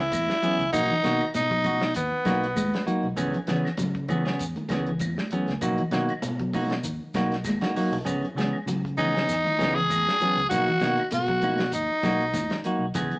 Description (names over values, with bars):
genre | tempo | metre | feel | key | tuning
afrobeat | 98 BPM | 4/4 | swing 55% on 16ths | unclear | A4 = 441 Hz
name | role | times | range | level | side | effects
growling tenor saxophone | melody | 0.0-2.8, 9.0-12.6 s | B3 to G#4 | -24 LUFS | equal | none
fingered electric bass | bass | 0.0-13.1 s | B1 to C#3 | -32 LUFS | equal | none
warm soul drum kit | drums | 0.1-13.2 s | hi-hat, kick drum, snare drum | -34 LUFS | equal | none
claves | percussion | 0.1-13.1 s | none | -42 LUFS | equal | none
congas | percussion | 0.1-13.1 s | none | -35 LUFS | right 1 dB | none
shekere | percussion | 0.1-13.1 s | none | -40 LUFS | equal | none
mellow electric guitar | arpeggios | 0.4-12.9 s | D#3 to G#3 | -30 LUFS | left 1 dB | spring reverb
clean electric guitar | stabs | 0.4-13.2 s | E3 to G#4 | -28 LUFS | right 1 dB | none
room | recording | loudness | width
light reverb | band playing live in one room, small speaker sound | -23 LUFS | side -25 dB against mid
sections
0.0-13.2 A section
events
drum fill 7.5-8.1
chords
0.0 C#m7; 0.7 Bmaj7; 3.2 C#m7; 5.6 Bmaj7; 8.1 C#m7; 10.5 Bmaj7